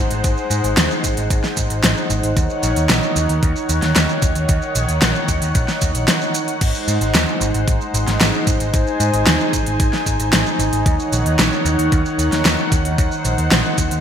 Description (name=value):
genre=synthwave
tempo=113 BPM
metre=4/4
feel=straight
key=Eb dorian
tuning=A4 = 443 Hz
part: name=warm analog pad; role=sustained chords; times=0.0-14.0 s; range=Eb3 to Ab5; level=-20 LUFS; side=equal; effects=lush chorus, sidechain pumping
part: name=picked electric bass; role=bass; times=0.0-14.0 s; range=Ab1 to Ab2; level=-20 LUFS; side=equal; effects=sidechain pumping
part: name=pop drum kit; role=drums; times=0.1-14.0 s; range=crash cymbal, hi-hat, shaker, snare drum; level=-20 LUFS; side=equal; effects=gated reverb
part: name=electronic kick drum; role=drums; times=0.2-13.9 s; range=none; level=-19 LUFS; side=equal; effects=none
room=moderate plate reverb, RT60 2.3 s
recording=bright 1980s-style digital production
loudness=-15 LUFS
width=side -8 dB against mid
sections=0.0-14.0 A section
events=none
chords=0.0 Ab7; 2.4 Ebm7; 6.6 Ab7; 10.9 Ebm7